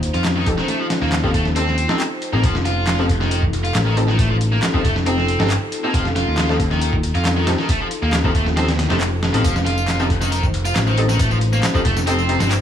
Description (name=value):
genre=breakbeat, breaks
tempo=137 BPM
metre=4/4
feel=straight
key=unclear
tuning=A4 = 440 Hz
part: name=dark analog pad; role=sustained chords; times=0.0-12.6 s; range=Eb4 to C5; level=-28 LUFS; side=equal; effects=chorus, phaser, vintage 12-bit sampler grit, sidechain pumping
part: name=modern bright picked electric bass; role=bass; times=0.0-12.6 s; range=F1 to F2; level=-20 LUFS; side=equal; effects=none
part: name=dusty soul sampler-style drum kit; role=drums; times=0.0-12.6 s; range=hi-hat, kick drum, snare drum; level=-21 LUFS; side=equal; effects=overdrive
part: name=tight distorted guitar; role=riff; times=0.1-12.5 s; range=Eb3 to F4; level=-23 LUFS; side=equal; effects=distortion, tube saturation, tape echo
part: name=electronic handclaps and tambourine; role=drums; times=0.2-12.6 s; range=none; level=-30 LUFS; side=left 1 dB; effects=overdrive
part: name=orchestra-hit-like synth stab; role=stabs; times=0.5-12.4 s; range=C4 to A4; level=-26 LUFS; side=left 2 dB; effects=built-in reverb, cassette tape, tape echo
room=light reverb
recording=vinyl crackle, small room ambience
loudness=-16 LUFS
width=side -9 dB against mid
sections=0.0-9.4 A section; 9.4-12.6 B section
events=drop 9.4-12.6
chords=0.0 F7